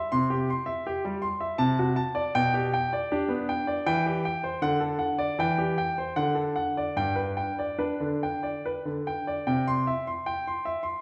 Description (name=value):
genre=classical, baroque-style suite movement for grand piano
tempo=70-83 BPM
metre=3/4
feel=rubato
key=G major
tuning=A4 = 440 Hz
part: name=clear grand piano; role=solo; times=0.0-11.0 s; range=G2 to C6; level=-28 LUFS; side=equal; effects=none
room=wet recital hall reverb, RT60 1.6 s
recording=heard from further back in the room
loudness=-28 LUFS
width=mono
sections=0.0-9.5 A section; 9.5-11.0 A section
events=none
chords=0.0 C; 1.6 D7/C; 2.3 G/B; 3.8 C/E; 4.6 D; 5.4 C/E; 6.2 D; 7.0 G; 9.5 C